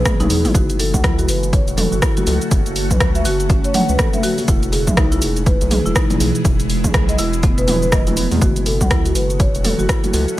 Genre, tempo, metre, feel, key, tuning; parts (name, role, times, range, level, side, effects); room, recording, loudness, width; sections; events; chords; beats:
afro house; 122 BPM; 4/4; swing 60% on 16ths; F# minor; A4 = 445 Hz
ethereal airy pad; sustained chords; 0.0-10.4 s; B2 to F#4; -25 LUFS; equal; ensemble chorus, built-in reverb, phaser, sidechain pumping
marimba with medium mallets; arpeggios; 0.0-10.3 s; B3 to F#5; -22 LUFS; equal; sidechain pumping, tape echo
round analog bass; bass; 0.0-10.3 s; E1 to E2; -20 LUFS; equal; sidechain pumping
deep house drum kit; drums; 0.1-10.4 s; hi-hat, rim click, shaker, toms; -22 LUFS; equal; overdrive, studio reverb
electronic kick drum; drums; 0.1-10.0 s; -17 LUFS; equal; overdrive, studio reverb
congas; percussion; 0.1-10.1 s; -25 LUFS; right 1 dB
digital ambience; -14 LUFS; side -15 dB against mid
0.0-10.4 A section
drum fill 0.0-0.5
0.0 E; 0.5 F#m; 4.5 E; 8.4 F#m
0.06 | 0.55 1.04 1.53 2.02 | 2.51 3.01 3.50 3.99 | 4.48 4.97 5.46 5.96 | 6.45 6.94 7.43 7.92 | 8.42 8.91 9.40 9.89 | 10.38